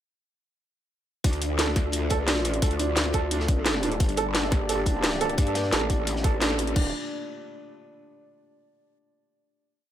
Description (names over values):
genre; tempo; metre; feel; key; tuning
dark technical drum and bass; 174 BPM; 4/4; straight; D minor; A4 = 440 Hz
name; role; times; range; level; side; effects
dark analog pad; sustained chords; 1.2-6.9 s; A3 to D5; -32 LUFS; equal; chorus, sidechain pumping
felt-muted upright piano; arpeggios; 1.2-6.9 s; D4 to A4; -31 LUFS; right 6 dB; sidechain pumping, digital delay
growl bass; bass; 1.2-6.9 s; D1 to G2; -28 LUFS; left 1 dB; chorus, overdrive, sidechain pumping
drum and bass drum kit; drums; 1.2-6.8 s; crash cymbal, hi-hat, snare drum; -28 LUFS; left 1 dB; none
electronic kick drum; drums; 1.2-6.8 s; none; -24 LUFS; equal; overdrive
crunchy breakbeat drum kit; drums; 1.3-6.7 s; hi-hat, snare drum; -38 LUFS; left 1 dB; none
room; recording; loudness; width
light reverb; none; -22 LUFS; side -11 dB against mid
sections
1.2-6.8 drop; 6.8-8.1 final chord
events
drop 1.2-6.8; band accent 6.4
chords
1.2 Dm; 4.0 Gm; 6.8 Dm